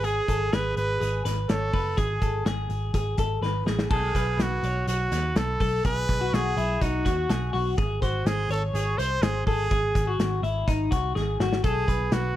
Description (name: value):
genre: jangly indie pop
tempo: 124 BPM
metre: 4/4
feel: straight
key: unclear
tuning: A4 = 441 Hz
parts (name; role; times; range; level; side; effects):
- brilliant trumpet; melody; 0.0-12.4 s; F#4 to B#4; -29 LUFS; right 2 dB; tape echo
- twelve-string electric guitar; arpeggios; 0.0-12.3 s; D#4 to C#5; -30 LUFS; left 3 dB; none
- vintage muted picked electric bass; bass; 0.0-12.3 s; F#1 to D#2; -28 LUFS; equal; none
- loose indie drum kit; drums; 0.0-12.2 s; crash cymbal, hi-hat, kick drum, snare drum; -28 LUFS; equal; none
room: studio ambience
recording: none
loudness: -23 LUFS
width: side -13 dB against mid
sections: 0.0-3.9 A section; 3.9-12.4 B section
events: drum fill 3.4-3.9, 11.2-11.6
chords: 0.0 G#m; 3.9 B; 7.8 G#; 11.6 B5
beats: | 0.04 0.52 1.01 1.49 | 1.98 2.46 2.95 3.43 | 3.91 4.40 4.88 5.37 | 5.85 6.33 6.82 7.30 | 7.78 8.27 8.75 9.23 | 9.71 10.20 10.68 11.16 | 11.64 12.12